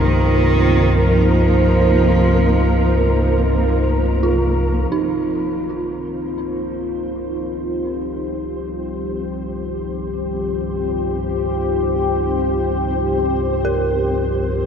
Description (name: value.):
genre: dark ambient drone.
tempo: free time.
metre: none.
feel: none.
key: unclear.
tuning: A4 = 441 Hz.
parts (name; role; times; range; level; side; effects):
clear cello; melody; 0.0-3.9 s; Eb3 to F3; -22 LUFS; right 1 dB; tape echo.
deep dark ambient pad; sustained chords; 0.0-14.7 s; C3 to C5; -20 LUFS; equal; chorus, built-in reverb.
dark detuned synth bell; arpeggios; 0.0-14.7 s; Eb4 to Bb4; -27 LUFS; right 3 dB; chorus, tape echo.
deep rumbling drone; drone; 0.0-14.7 s; C2 to G2; -21 LUFS; equal; built-in reverb.
flickering grainy texture; texture; 0.0-14.7 s; Bb3 to C5; -26 LUFS; equal; built-in reverb.
room: wet huge ambient reverb, RT60 7.9 s.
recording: in a vast, echoing space.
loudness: -16 LUFS.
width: side -7 dB against mid.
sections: 0.0-4.9 A section; 4.9-14.7 B section.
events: fade-in on synth drone 4.9-14.7; fade-in on synth texture 4.9-14.7.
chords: 0.0 Ebsus2/C.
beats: free time.